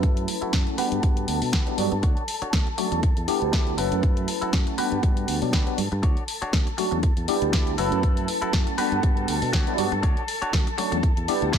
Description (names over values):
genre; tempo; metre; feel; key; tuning
filtered disco house; 120 BPM; 4/4; swing 55% on 16ths; unclear; A4 = 444 Hz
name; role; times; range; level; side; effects
tine electric piano; accompaniment; 0.0-11.6 s; F#3 to F#5; -27 LUFS; equal; medium stereo tremolo, phaser, sidechain pumping, low-pass filter
rich chamber string section; sustained chords; 0.0-11.6 s; A4 to A5; -32 LUFS; left 1 dB; sidechain pumping, low-pass filter
semi-hollow electric guitar; riff; 0.0-11.6 s; D4 to D5; -33 LUFS; left 3 dB; sidechain pumping, low-pass filter
fingered electric bass; bass; 0.0-11.6 s; F#1 to B2; -29 LUFS; equal; tube saturation, sidechain pumping, low-pass filter
electronic kick drum; drums; 0.0-11.6 s; none; -22 LUFS; equal; none
house drum kit; drums; 0.0-11.6 s; hi-hat, snare drum; -30 LUFS; left 1 dB; sidechain pumping on hats, sidechain pumping on cymbals
tambourine; percussion; 0.0-11.6 s; none; barely audible; none; none
room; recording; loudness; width
little or no reverb; none; -21 LUFS; side -8 dB against mid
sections
0.0-11.6 A section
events
filter sweep 0.0-11.6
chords
0.0 F#m7; 0.8 Gmaj7; 2.0 Dmaj7; 3.0 Em7; 3.8 F#m7; 4.8 Gmaj7; 6.0 Dmaj7; 7.0 Em7; 7.8 F#m7; 8.8 Gmaj7; 10.0 Dmaj7; 11.0 Em7